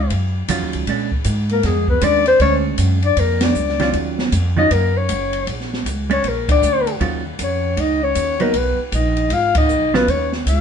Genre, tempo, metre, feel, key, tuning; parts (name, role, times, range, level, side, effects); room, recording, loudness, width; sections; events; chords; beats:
jazz, small-group swing and bop; 156 BPM; 4/4; swing 64% on 8ths; A4 = 440 Hz
warm clarinet; melody; 0.0-10.6 s; Ab4 to F5; -18 LUFS; left 5 dB
breathy trombone; second line; 0.0-10.6 s; Ab3 to F4; -25 LUFS; right 5 dB
upright bass; bass; 0.0-10.6 s; Gb1 to Bb2; -20 LUFS; equal
open jazz drum kit; drums; 0.1-10.6 s; hi-hat, kick drum, ride cymbal, snare drum; -23 LUFS; equal
hollow-body jazz guitar; accompaniment; 0.5-10.1 s; Eb3 to F4; -22 LUFS; right 6 dB
moderate stone room reverb, RT60 1.1 s; band playing live in one room, nothing above 10.4 kHz; -15 LUFS; side -7 dB against mid
0.0-7.0 A section; 7.0-10.6 A section
band accent 3.4, 6.4, 9.5
0.0 Ebm9; 0.9 Bb7#9; 3.9 Ebm9; 6.2 Bb; 7.0 Ebm9; 8.5 Abm; 10.1 Eb7sus2
0.11 0.49 | 0.87 1.26 1.64 2.02 | 2.41 2.79 3.17 3.56 | 3.94 4.32 4.71 5.09 | 5.47 5.86 6.24 6.63 | 7.01 7.39 7.78 8.16 | 8.54 8.93 9.31 9.70 | 10.08 10.46